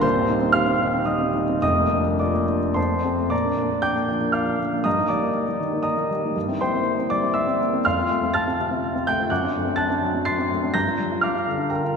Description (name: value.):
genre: classical, romantic character piece for solo piano.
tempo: 102-127 BPM.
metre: 3/4.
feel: rubato.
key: Bb major.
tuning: A4 = 437 Hz.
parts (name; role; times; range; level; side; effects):
warm concert grand piano; solo; 0.0-12.0 s; Eb1 to C7; -20 LUFS; equal; none.
room: wet church reverb, RT60 2.9 s.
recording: none.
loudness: -20 LUFS.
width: side -5 dB against mid.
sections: 0.0-3.3 A section; 3.3-12.0 B section.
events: none.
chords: 0.0 Cm/Eb; 1.6 Bb/F; 2.8 F; 3.3 Bb; 4.9 Eb/G; 6.4 C7/G; 7.8 F; 9.3 D7/F#; 10.7 Gm7.